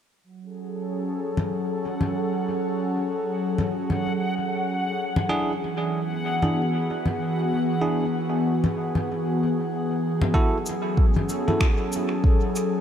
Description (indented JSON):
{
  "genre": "ambient dub",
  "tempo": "95 BPM",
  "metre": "4/4",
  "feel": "swing 60% on 16ths",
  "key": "F# minor",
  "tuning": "A4 = 440 Hz",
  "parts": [
    { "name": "airy breathy pad", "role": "sustained chords", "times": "0.4-12.8 s", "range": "E3 to A4", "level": "-25 LUFS", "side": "equal", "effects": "chorus" },
    { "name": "backwards swelling texture", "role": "texture", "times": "1.9-10.4 s", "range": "F#5", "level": "-33 LUFS", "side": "left 2 dB", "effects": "built-in reverb" },
    { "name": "electronic congas, cabasa and finger snaps", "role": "drums", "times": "1.4-12.7 s", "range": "none", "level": "-27 LUFS", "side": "left 1 dB", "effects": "dub echo" },
    { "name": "barky tine electric piano", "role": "stabs", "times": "5.3-11.7 s", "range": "D4 to A4", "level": "-30 LUFS", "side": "right 3 dB", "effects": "dub echo" },
    { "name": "electronic kick drum", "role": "drums", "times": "10.3-12.4 s", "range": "none", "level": "-20 LUFS", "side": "equal", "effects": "none" }
  ],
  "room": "moderate echo chamber reverb, RT60 2.2 s",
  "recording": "none",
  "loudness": "-22 LUFS",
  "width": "side -9 dB against mid",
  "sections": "0.2-10.3 A section; 10.3-12.8 B section",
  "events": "none",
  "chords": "0.2 F#m; 5.3 E7; 10.3 F#m7"
}